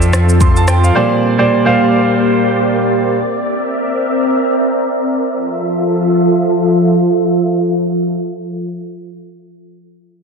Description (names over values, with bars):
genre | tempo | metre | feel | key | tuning
amapiano | free time | none | none | F major | A4 = 441 Hz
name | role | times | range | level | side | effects
bright grand piano | accompaniment | 0.0-3.2 s | Bb2 to C6 | -13 LUFS | right 2 dB | low-pass filter
soft string machine | sustained chords | 0.0-9.7 s | F3 to E5 | -14 LUFS | equal | ensemble chorus, low-pass filter
punchy sub bass | bass | 0.0-0.9 s | F2 | -11 LUFS | equal | none
deep house drum kit | drums | 0.0-0.9 s | kick drum, rim click, shaker | -15 LUFS | equal | vintage 12-bit sampler grit
room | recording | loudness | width
light reverb, digital ambience | dense, heavily limited modern master | -11 LUFS | side -5 dB against mid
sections
0.0-5.3 A section; 5.3-9.7 B section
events
filter sweep 0.0-5.3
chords
0.0 Fmaj7; 1.0 Bb69; 3.1 C9; 5.3 Fmaj7